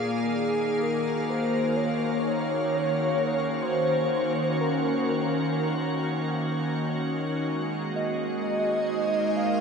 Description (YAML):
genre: ambient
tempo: free time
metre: none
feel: none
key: Eb dorian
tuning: A4 = 440 Hz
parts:
  - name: soft additive organ-like pad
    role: sustained chords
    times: 0.0-9.6 s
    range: Eb3 to Ab5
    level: -26 LUFS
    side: equal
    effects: ensemble chorus, built-in reverb
  - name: warm velvety synth lead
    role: melody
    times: 0.3-9.6 s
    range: Ab4 to F5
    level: -28 LUFS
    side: equal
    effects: chorus, ping-pong delay
room: wet shimmer reverb, RT60 8.1 s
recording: none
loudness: -24 LUFS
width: side -5 dB against mid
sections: 0.0-9.6 A section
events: none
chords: 0.0 Ebm7; 7.5 Ab7